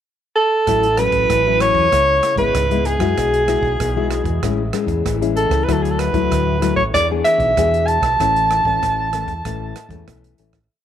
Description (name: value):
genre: samba and choro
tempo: 96 BPM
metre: 4/4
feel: straight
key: A major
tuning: A4 = 440 Hz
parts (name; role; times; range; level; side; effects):
- mellow soprano saxophone; melody; 0.4-10.1 s; G#4 to A5; -17 LUFS; right 2 dB; none
- nylon-string guitar; accompaniment; 0.7-10.6 s; G#2 to G#4; -22 LUFS; left 9 dB; none
- modern bright fingered electric bass; bass; 0.7-10.7 s; G#1 to F#2; -23 LUFS; right 1 dB; none
- open jazz drum kit; drums; 0.7-10.7 s; hi-hat, kick drum, rim click; -27 LUFS; right 4 dB; none
room: moderate spring reverb, RT60 2.5 s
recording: 1960s-style stereo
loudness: -15 LUFS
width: side -10 dB against mid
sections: 0.0-0.7 pickup bar; 0.7-10.7 A section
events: fade-out 8.2-10.7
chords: 0.0 N.C.; 0.7 A6; 1.9 C#m7; 3.2 Eadd9/B; 4.4 Amaj7; 5.7 Dadd9; 6.9 E7; 8.2 A